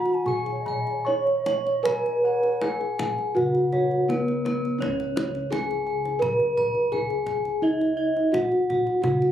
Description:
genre	Javanese gamelan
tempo	73-85 BPM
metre	4/4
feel	straight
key	C# slendro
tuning	A4 = 438 Hz
part	gamelan-type bronze metallophone	melody	0.0-9.3 s	B3-40c to C#5	-24 LUFS	equal	none
part	mellow hollow bansuri	second line	0.0-2.7 s	C#5 to B5-37c	-36 LUFS	equal	none
part	gamelan-type bronze metallophone	arpeggios	0.0-9.3 s	B4-40c to C#6	-30 LUFS	equal	none
part	kendang	percussion	0.1-9.3 s	none	-34 LUFS	left 1 dB	none
part	gamelan-type bossed gongs	arpeggios	0.3-4.5 s	B4-40c to C#6	-34 LUFS	left 2 dB	none
part	gamelan-type bossed gongs	bass	0.3-9.3 s	C#2 to B4-40c	-32 LUFS	equal	none
room	moderate booth ambience, RT60 0.2 s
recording	recorded on a phone in the room, club reverb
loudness	-22 LUFS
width	side -10 dB against mid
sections	0.0-4.8 A section; 4.8-9.3 B section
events	none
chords	none

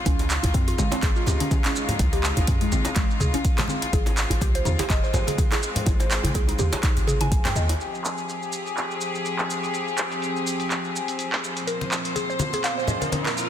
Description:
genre	afro house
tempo	124 BPM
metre	4/4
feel	swing 56% on 16ths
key	F minor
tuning	A4 = 442 Hz
part	warm studio string section	sustained chords	0.0-13.5 s	Bb2 to C5	-29 LUFS	left 2 dB	sidechain pumping
part	mallet-like synth pluck	arpeggios	0.1-7.7, 11.7-13.3 s	Ab3 to Ab5	-30 LUFS	right 1 dB	chorus, phaser, sidechain pumping, ping-pong delay
part	warm 808-style bass	bass	0.1-7.7 s	F1 to Ab2	-25 LUFS	equal	sidechain pumping
part	afro-pop drum kit	drums	0.1-13.3 s	handclaps, hi-hat, toms	-29 LUFS	equal	low-pass filter on hats, studio reverb, low-pass filter on snare, low-pass filter on toms
part	electronic kick drum	drums	0.1-7.4 s	none	-23 LUFS	equal	studio reverb
part	djembe	percussion	0.1-7.8 s	none	-33 LUFS	right 1 dB	none
part	maracas	percussion	0.1-13.5 s	none	-35 LUFS	right 2 dB	none
part	congas	percussion	0.2-7.7, 11.8-13.3 s	none	-30 LUFS	left 2 dB	none
part	riser	sound effects	12.3-13.5 s	none	-32 LUFS	equal	none
room	light reverb, studio ambience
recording	dense, heavily limited modern master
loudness	-21 LUFS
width	side -10 dB against mid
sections	0.0-7.8 A section; 7.8-13.5 B section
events	filter sweep on drum 7.8-13.5; riser 12.3-13.5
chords	0.1 Dbmaj7; 3.9 Ab6; 7.8 Fm; 11.7 Bbsus2

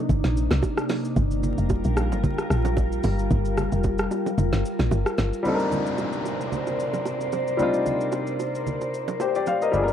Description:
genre	amapiano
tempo	112 BPM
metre	4/4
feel	swing 55% on 16ths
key	C minor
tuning	A4 = 439 Hz
part	glassy FM pad	sustained chords	0.0-9.9 s	C3 to G5	-28 LUFS	left 1 dB	ensemble chorus, built-in reverb
part	deep log drum bass	bass	0.1-5.3 s	F1 to C2	-23 LUFS	equal	none
part	afro-pop drum kit	drums	0.1-9.9 s	hi-hat, kick drum, rim click, shaker, snare drum	-28 LUFS	equal	vintage 12-bit sampler grit
part	congas and bongos	percussion	0.1-9.9 s	none	-31 LUFS	right 5 dB	none
part	clear baby grand piano	accompaniment	5.4-9.9 s	G3 to F5	-25 LUFS	left 3 dB	none
part	downlifter	sound effects	5.5-9.7 s	none	-34 LUFS	equal	none
part	fat analog bass	bass	9.7-9.9 s	G1	-26 LUFS	equal	none
room	light reverb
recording	vinyl crackle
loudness	-22 LUFS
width	side -9 dB against mid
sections	0.0-5.5 A section; 5.5-9.9 B section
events	drop 0.0-5.5; kick muted 4.4-5.5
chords	0.0 Cm9; 1.2 Gm7; 5.5 Cm9

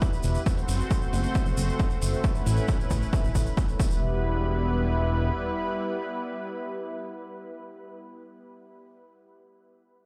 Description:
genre	uplifting trance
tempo	135 BPM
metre	4/4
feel	straight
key	E minor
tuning	A4 = 438 Hz
part	lush unison pad	sustained chords	0.0-8.2 s	G3 to C5	-34 LUFS	equal	chorus, sidechain pumping
part	electronic hi-hat	drums	0.0-3.8 s	none	-51 LUFS	equal	none
part	electronic kick drum	drums	0.0-3.9 s	none	-28 LUFS	equal	overdrive
part	tube shaker	percussion	0.0-4.0 s	none	-43 LUFS	equal	none
part	fat analog bass	bass	0.2-5.3 s	E1 to A1	-28 LUFS	equal	tube saturation, sidechain pumping
room	light reverb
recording	played on a big sound system in a bare room, large studio reverb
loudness	-27 LUFS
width	mono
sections	0.0-4.0 A section; 4.0-7.6 B section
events	filter sweep on analog synth bass 0.0-4.0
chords	0.5 F#dim; 2.2 Aadd9; 3.8 Em

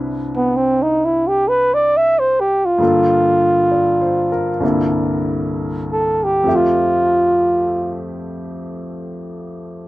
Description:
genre	jazz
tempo	65 BPM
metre	4/4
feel	swing 68% on 8ths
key	C major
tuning	A4 = 440 Hz
part	warm upright piano	accompaniment	0.0-9.9 s	C2 to E5	-21 LUFS	left 1 dB	none
part	breathy flugelhorn	melody	0.4-8.1 s	B3 to E5	-14 LUFS	right 1 dB	none
room	light reverb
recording	dry, close 1970s-style studio recording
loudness	-14 LUFS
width	side -17 dB against mid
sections	0.0-9.9 A section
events	flugelhorn solo 0.0-9.9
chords	0.0 Cmaj9; 2.8 Gm9; 4.6 C13; 6.5 Fmaj7

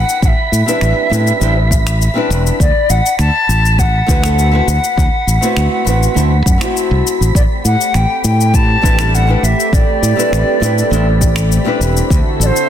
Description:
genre	sunset chillout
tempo	101 BPM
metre	4/4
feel	straight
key	A dorian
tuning	A4 = 439 Hz
part	wooden flute	melody	0.0-12.7 s	C5 to A5	-17 LUFS	left 1 dB	digital delay
part	modern bright fingered electric bass	bass	0.0-12.5 s	E1 to A2	-14 LUFS	equal	tube saturation
part	wind-like tuned noise texture	texture	0.0-12.7 s	B5	-27 LUFS	right 2 dB	built-in reverb
part	cabasa and finger snaps	drums	0.1-12.7 s	none	-23 LUFS	left 6 dB	soft clipping on snare
part	electronic kick drum	drums	0.2-12.2 s	none	-14 LUFS	equal	none
part	nylon-string guitar	accompaniment	0.7-12.1 s	G3 to C5	-19 LUFS	moving between left 3 dB and right 5 dB	auto-pan, digital delay
part	lush unison pad	sustained chords	7.4-12.7 s	D3 to A4	-21 LUFS	equal	chorus
room	light reverb, studio reverb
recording	dense, heavily limited modern master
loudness	-10 LUFS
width	side -10 dB against mid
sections	0.0-12.7 A section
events	none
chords	0.0 Am11; 2.6 D13; 7.4 Am11; 12.1 D13

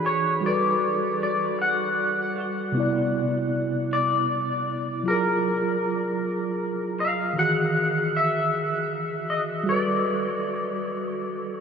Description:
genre	R&B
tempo	52 BPM (dotted quarters)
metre	6/8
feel	straight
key	unclear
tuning	A4 = 438 Hz
part	twangy electric guitar	melody	0.0-11.6 s	A#4 to F#5	-25 LUFS	left 1 dB	lush chorus, tape echo
part	mellow tine electric piano	accompaniment	0.0-11.6 s	C3 to D5	-25 LUFS	right 1 dB	medium stereo tremolo
room	wet huge ambient reverb, RT60 7.4 s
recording	dreamy mix soaked in reverb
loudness	-22 LUFS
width	side -6 dB against mid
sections	0.0-11.6 A section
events	none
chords	0.4 Gmaj9; 2.8 Cmaj9; 5.1 F#maj9; 7.4 Emaj9; 9.7 Gmaj9

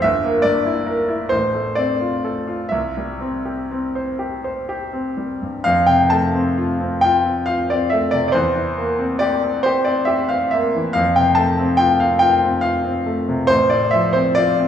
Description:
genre	classical, romantic nocturne for solo piano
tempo	40-49 BPM (dotted quarters)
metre	6/8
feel	rubato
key	F major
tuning	A4 = 441 Hz
part	clear grand piano	solo	0.0-14.7 s	G1 to A5	-16 LUFS	left 1 dB	none
room	wet recital hall reverb, RT60 1.6 s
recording	recorded in a church or concert hall, small room ambience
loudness	-16 LUFS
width	side -9 dB against mid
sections	0.0-5.6 A section; 5.6-14.7 B section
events	none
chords	0.0 Edim/G; 1.3 F/A; 2.7 C; 5.6 F; 8.3 C7/E; 11.0 F; 13.5 F/A

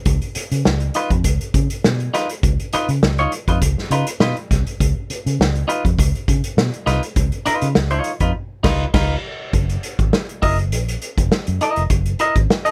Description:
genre	funk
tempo	101 BPM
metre	4/4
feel	straight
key	Db mixolydian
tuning	A4 = 441 Hz
part	vintage muted fingered electric bass	bass	0.1-12.5 s	F1 to Db3	-22 LUFS	equal	none
part	vintage drum kit	drums	0.1-12.7 s	crash cymbal, hi-hat, kick drum, snare drum	-22 LUFS	equal	none
part	clean electric guitar	accompaniment	1.0-12.7 s	Eb4 to Fb5	-22 LUFS	equal	none
room	little or no reverb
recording	none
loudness	-19 LUFS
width	mono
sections	0.0-9.5 A section; 9.5-12.7 B section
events	band accent 8.3-9.5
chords	0.0 Db9; 9.5 Gb13

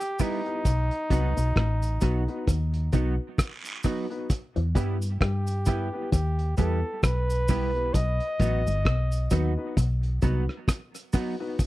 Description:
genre	roots reggae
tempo	66 BPM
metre	4/4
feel	swing 58% on 16ths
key	unclear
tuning	A4 = 440 Hz
part	warm flugelhorn	melody	0.0-9.8 s	D#4 to D#5	-31 LUFS	equal	tape echo
part	cloth-damped thuddy drum kit	drums	0.0-11.7 s	hi-hat, kick drum, rim click	-24 LUFS	equal	none
part	cabasa and guiro	percussion	0.0-11.7 s	none	-41 LUFS	right 2 dB	none
part	clean electric guitar	accompaniment	0.2-11.4 s	F#3 to G4	-34 LUFS	right 6 dB	analog chorus, tape echo
part	warm concert grand piano	stabs	0.2-11.5 s	B3 to B4	-34 LUFS	left 3 dB	none
part	electric guitar with an envelope filter	riff	0.7-10.4 s	G2 to G3	-33 LUFS	left 3 dB	none
part	vintage muted fingered electric bass	bass	0.7-10.5 s	G1 to G2	-26 LUFS	equal	none
room	little or no reverb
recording	dry, close 1970s-style studio recording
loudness	-24 LUFS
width	side -17 dB against mid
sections	0.0-11.7 A section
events	none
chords	0.0 Em; 0.7 B; 4.3 Em; 7.9 B

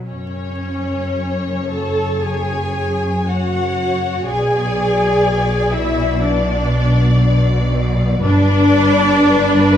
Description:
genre	classical, slow romantic movement for string orchestra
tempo	54-63 BPM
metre	4/4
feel	rubato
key	F# minor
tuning	A4 = 435 Hz
part	clear symphonic viola section	accompaniment	0.0-9.8 s	C#4 to A4	-18 LUFS	equal	none
part	rich studio violin section	melody	0.1-9.8 s	B4 to D5	-26 LUFS	left 6 dB	none
part	clear symphonic violin section	second line	0.1-9.7 s	C#5 to A5	-23 LUFS	left 3 dB	none
part	rich symphonic cello section	bass	0.1-9.8 s	F#2 to B2	-19 LUFS	equal	none
part	rich symphonic double bass section	bass	0.1-9.8 s	F#1 to B1	-22 LUFS	equal	none
room	wet scoring stage reverb, RT60 1.7 s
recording	vinyl crackle, small room ambience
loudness	-14 LUFS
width	side -10 dB against mid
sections	0.1-9.8 A section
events	none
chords	0.1 F#5; 4.3 G#dim/B; 8.2 G

